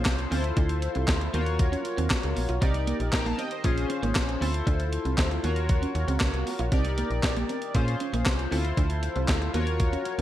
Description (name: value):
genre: early-eighties boogie funk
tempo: 117 BPM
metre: 4/4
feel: straight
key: unclear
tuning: A4 = 442 Hz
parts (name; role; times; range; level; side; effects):
- chorused polysynth; accompaniment; 0.0-10.2 s; Db4 to Bb5; -30 LUFS; left 2 dB; none
- clean electric guitar; riff; 0.0-10.2 s; Bb3 to F4; -34 LUFS; right 4 dB; lush chorus
- slap-like FM bass; bass; 0.0-10.2 s; Ab1 to Bb2; -28 LUFS; equal; none
- clean 12-bit digital drum machine; drums; 0.1-10.2 s; handclaps, hi-hat, kick drum, snare drum; -27 LUFS; equal; gated reverb
room: digital ambience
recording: none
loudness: -24 LUFS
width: side -13 dB against mid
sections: 0.0-10.2 A section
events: none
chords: 0.3 Dm9; 1.3 Ebm9; 2.6 Cm9; 3.6 Bbm9; 4.4 Dm9; 5.4 Ebm9; 6.7 Cm9; 7.7 Bbm9; 8.5 Dm9; 9.5 Ebm9